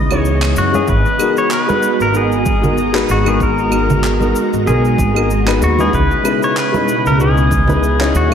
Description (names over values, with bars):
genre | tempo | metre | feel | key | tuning
sunset chillout | 95 BPM | 4/4 | swing 55% on 16ths | G# minor | A4 = 436 Hz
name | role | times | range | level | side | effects
pedal steel guitar | melody | 0.0-8.3 s | F#4 to D#5 | -18 LUFS | left 1 dB | vintage 12-bit sampler grit, analog delay
warm baby grand piano | accompaniment | 0.0-8.3 s | G#3 to C#5 | -18 LUFS | moving between left 6 dB and right 3 dB | auto-pan, vintage 12-bit sampler grit, analog delay
soft string machine | sustained chords | 0.0-8.3 s | B2 to A#5 | -20 LUFS | equal | ensemble chorus
upright bass | bass | 0.0-8.3 s | G#1 to F#2 | -17 LUFS | equal | none
electronic claves, shaker and handclaps | drums | 0.1-8.3 s | none | -26 LUFS | right 2 dB | none
congas | percussion | 0.7-8.3 s | none | -23 LUFS | right 2 dB | none
electronic kick drum | drums | 0.9-7.7 s | none | -20 LUFS | equal | none
room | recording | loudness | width
wet plate reverb, RT60 2.1 s | dreamy mix soaked in reverb | -12 LUFS | side -8 dB against mid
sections
0.0-8.3 A section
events
none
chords
0.0 C#m9; 0.9 G#m7; 5.9 C#m9